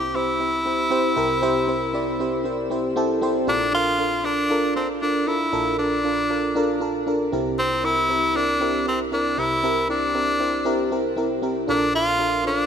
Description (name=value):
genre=pop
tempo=117 BPM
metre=4/4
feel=swing 55% on 16ths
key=unclear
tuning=A4 = 438 Hz
part: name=edgy tenor saxophone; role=melody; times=0.0-12.7 s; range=C4 to G4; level=-22 LUFS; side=equal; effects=shimmer reverb
part: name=FM electric piano with soft pad layer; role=accompaniment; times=0.0-12.7 s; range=Bb1 to G5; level=-23 LUFS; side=equal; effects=chorus, shimmer reverb
room=moderate lush hall reverb, RT60 2.4 s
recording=none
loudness=-20 LUFS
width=side -8 dB against mid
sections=0.0-3.5 A section; 3.5-12.7 B section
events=FM electric piano fill 2.7-3.5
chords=0.0 C; 3.5 Bbmaj7; 7.3 C7; 11.7 Bbmaj7